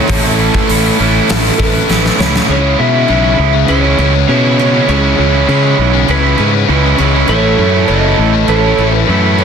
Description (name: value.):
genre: rock, shoegaze and dream pop.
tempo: 100 BPM.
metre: 4/4.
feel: straight.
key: unclear.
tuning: A4 = 440 Hz.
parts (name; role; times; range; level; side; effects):
electric guitar through a small old amp; melody; 0.0-9.4 s; B4 to E5; -18 LUFS; left 1 dB; slapback echo.
picked twelve-string acoustic guitar; arpeggios; 0.0-9.4 s; G#4 to C#5; -22 LUFS; right 7 dB; lush chorus, slapback echo.
biting overdriven guitar; riff; 0.0-9.4 s; A2 to E4; -18 LUFS; left 14 dB; lush chorus.
biting overdriven guitar; riff; 0.0-9.4 s; A2 to C#4; -18 LUFS; left 1 dB; none.
crunchy overdriven guitar; riff; 0.0-9.4 s; A2 to E4; -15 LUFS; right 13 dB; reverse reverb.
fuzz fingered electric bass; bass; 0.1-9.4 s; F#1 to C#3; -14 LUFS; left 1 dB; overdrive.
gated 80s drum kit; drums; 0.1-2.5 s; hi-hat, kick drum, snare drum; -15 LUFS; left 1 dB; none.
tambourine; percussion; 0.1-2.4 s; none; -32 LUFS; right 16 dB; none.
room: small room ambience.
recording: dense, heavily limited modern master.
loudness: -9 LUFS.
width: side -7 dB against mid.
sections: 0.0-2.5 A section; 2.5-9.4 B section.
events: drum fill 1.9-2.5.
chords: 0.0 A; 2.5 C#m7; 7.3 A.